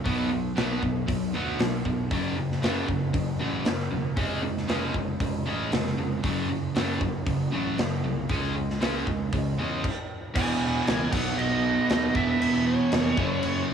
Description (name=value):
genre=hard rock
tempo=116 BPM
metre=4/4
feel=straight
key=unclear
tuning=A4 = 440 Hz
part: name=cranked stack guitar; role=riff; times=0.0-13.7 s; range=E2 to C#4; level=-28 LUFS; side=left 2 dB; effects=overdrive, cassette tape
part: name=sludgy distorted guitar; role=riff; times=0.0-13.7 s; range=E2 to C#4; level=-32 LUFS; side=right 12 dB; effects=overdrive, cassette tape
part: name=fuzz fingered electric bass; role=bass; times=0.0-13.7 s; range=E1 to E2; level=-33 LUFS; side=equal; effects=overdrive
part: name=big rock drum kit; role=drums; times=0.1-13.5 s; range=crash cymbal, hi-hat, kick drum, snare drum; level=-30 LUFS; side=equal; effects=none
part: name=high-gain lead guitar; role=melody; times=10.4-13.7 s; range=C#5 to G#5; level=-29 LUFS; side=right 3 dB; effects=distortion, cassette tape, analog delay
room=light reverb, small room reverb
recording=home recording on cassette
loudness=-24 LUFS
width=side -7 dB against mid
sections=0.0-10.4 A section; 10.4-13.7 B section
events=stop 9.8-10.4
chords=0.0 B5; 2.1 F#5; 4.2 C#/E#; 6.2 F#5; 8.3 C#5; 10.4 E; 11.1 B; 12.2 E5; 13.2 F#5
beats=| 0.05 0.56 1.08 1.60 | 2.11 2.63 3.14 3.66 | 4.17 4.69 5.21 5.72 | 6.24 6.75 7.27 7.78 | 8.30 8.81 9.33 9.84 | 10.35 10.87 11.38 11.89 | 12.41 12.92 13.43